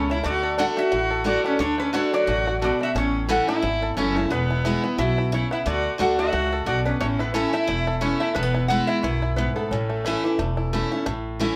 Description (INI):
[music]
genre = bluegrass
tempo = 178 BPM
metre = 4/4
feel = swing 56% on 8ths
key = A major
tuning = A4 = 444 Hz
[part]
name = bluegrass banjo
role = melody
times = 0.0-11.6 s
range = E3 to A4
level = -33 LUFS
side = equal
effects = none
[part]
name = lap resonator guitar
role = melody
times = 0.0-10.7 s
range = A4 to F#5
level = -30 LUFS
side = equal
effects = none
[part]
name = dark fiddle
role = second line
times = 0.0-10.7 s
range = A3 to B4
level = -29 LUFS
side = equal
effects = none
[part]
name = picked steel-string acoustic guitar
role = accompaniment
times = 0.0-11.6 s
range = E2 to F#4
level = -28 LUFS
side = equal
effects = none
[part]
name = upright bass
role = bass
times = 0.0-11.5 s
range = E1 to D2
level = -30 LUFS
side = equal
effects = none
[sound]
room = moderate studio reverb, RT60 0.5 s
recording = none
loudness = -23 LUFS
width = mono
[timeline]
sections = 0.3-11.1 A section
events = none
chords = 0.3 D; 3.0 A; 4.3 E; 5.7 D; 7.0 A; 8.4 E; 9.7 A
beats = | 0.25 0.59 0.93 1.27 | 1.60 1.94 2.28 2.62 | 2.96 3.30 3.63 3.97 | 4.31 4.65 4.98 5.32 | 5.66 6.00 6.33 6.67 | 7.01 7.35 7.69 8.02 | 8.36 8.70 9.04 9.38 | 9.71 10.05 10.39 10.73 | 11.07 11.41